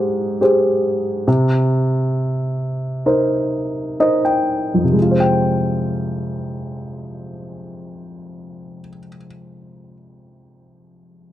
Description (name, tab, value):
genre	pop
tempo	60-72 BPM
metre	4/4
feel	straight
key	F minor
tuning	A4 = 440 Hz
part	warm grand piano	accompaniment	0.0-11.3 s	F2 to G5	-17 LUFS	equal	none
room	light reverb, small room ambience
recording	dry, close 1970s-style studio recording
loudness	-16 LUFS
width	side -12 dB against mid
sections	0.0-5.0 A section; 5.0-9.0 B section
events	slowing down 0.0-5.0; grand piano fill 3.5-5.0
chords	0.0 Abmaj7; 1.3 Cm7; 5.0 Fmadd9